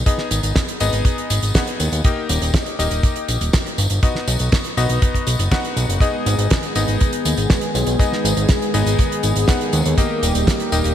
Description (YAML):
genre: italo disco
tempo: 121 BPM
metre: 4/4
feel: straight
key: G# minor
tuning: A4 = 440 Hz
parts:
  - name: bright electric grand piano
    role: stabs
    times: 0.0-10.9 s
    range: A#3 to F#5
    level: -24 LUFS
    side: left 4 dB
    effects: ping-pong delay
  - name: fat analog bass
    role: bass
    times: 0.0-10.9 s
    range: D#1 to D#2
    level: -20 LUFS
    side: equal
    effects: tube saturation
  - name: damped 70s drum kit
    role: drums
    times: 0.1-10.9 s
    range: hi-hat, snare drum, tambourine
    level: -22 LUFS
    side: right 1 dB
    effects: none
  - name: kick drum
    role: drums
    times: 0.1-10.6 s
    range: none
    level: -17 LUFS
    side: equal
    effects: none
  - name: warm analog pad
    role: sustained chords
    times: 6.0-10.9 s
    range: D#3 to G#4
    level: -22 LUFS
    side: equal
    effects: chorus
room: light reverb, studio reverb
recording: bright 1980s-style digital production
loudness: -16 LUFS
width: side -10 dB against mid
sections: 0.0-10.9 A section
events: none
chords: 0.0 G#m; 2.0 D#; 4.0 B; 6.0 G#m; 10.0 D#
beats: | 0.06 0.56 1.05 1.55 | 2.05 2.54 3.04 3.53 | 4.03 4.53 5.02 5.52 | 6.01 6.51 7.00 7.50 | 8.00 8.49 8.99 9.48 | 9.98 10.48